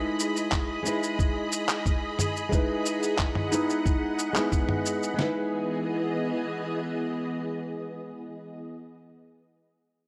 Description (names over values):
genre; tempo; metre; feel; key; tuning
sunset chillout; 90 BPM; 4/4; straight; E major; A4 = 441 Hz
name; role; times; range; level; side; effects
nylon-string guitar; accompaniment; 0.0-8.7 s; G#3 to B4; -32 LUFS; equal; low-pass filter, delay
soft string machine; sustained chords; 0.0-8.6 s; E3 to B5; -34 LUFS; equal; ensemble chorus
dusty soul sampler-style drum kit; drums; 0.2-5.2 s; handclaps, shaker, toms; -32 LUFS; equal; none
dusty soul sampler-style drum kit; drums; 0.5-5.3 s; kick drum, snare drum; -29 LUFS; equal; none
room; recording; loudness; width
moderate lush hall reverb, RT60 2.2 s; none; -28 LUFS; mono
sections
0.0-5.2 A section; 5.2-7.8 B section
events
filter sweep on nylon-string guitar 0.0-5.2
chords
0.0 Emaj7